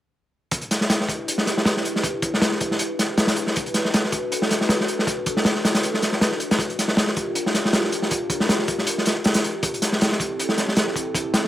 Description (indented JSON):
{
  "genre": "drum and bass, jungle",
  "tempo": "158 BPM",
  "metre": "4/4",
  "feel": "swing 55% on 16ths",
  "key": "E minor",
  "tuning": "A4 = 441 Hz",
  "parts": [
    { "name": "airy breathy pad", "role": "sustained chords", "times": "0.5-11.5 s", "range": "C4 to B4", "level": "-27 LUFS", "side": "equal", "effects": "chorus" },
    { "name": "crunchy breakbeat drum kit", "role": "drums", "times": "0.5-11.5 s", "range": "hi-hat, kick drum, snare drum", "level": "-20 LUFS", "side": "equal", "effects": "high-pass filter on kick, high-pass filter on hats, high-pass filter on snare, high-pass filter on room" }
  ],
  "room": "moderate plate reverb, RT60 0.9 s",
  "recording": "none",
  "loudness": "-19 LUFS",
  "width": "side -13 dB against mid",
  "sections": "0.5-11.5 A section",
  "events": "filter sweep on analog synth pad 0.5-11.5",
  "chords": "0.5 Em7; 3.6 Bm7; 6.6 Gm7; 9.6 Am7"
}